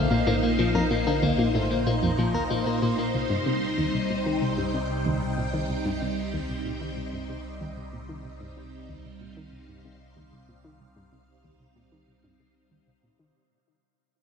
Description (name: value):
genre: ambient, sequencer-driven space music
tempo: 94 BPM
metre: 4/4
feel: straight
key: unclear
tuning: A4 = 440 Hz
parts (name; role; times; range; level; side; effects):
- phased string machine; sustained chords; 0.0-13.4 s; Bb2 to G5; -28 LUFS; equal; ensemble chorus, phaser
- clean electric guitar; arpeggios; 0.0-3.1 s; F3 to Bb4; -28 LUFS; left 3 dB; auto-pan, ping-pong delay
- analog pluck; riff; 0.0-13.3 s; C2 to Eb3; -29 LUFS; left 1 dB; chorus, ping-pong delay
- warm sub bass; bass; 0.0-13.3 s; Bb1 to C2; -36 LUFS; equal; none
room: wet lush hall reverb, RT60 2.6 s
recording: none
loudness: -24 LUFS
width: side -6 dB against mid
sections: 0.0-13.4 A section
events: fade-out 0.0-13.4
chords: 0.0 Bbsus2; 3.1 Cm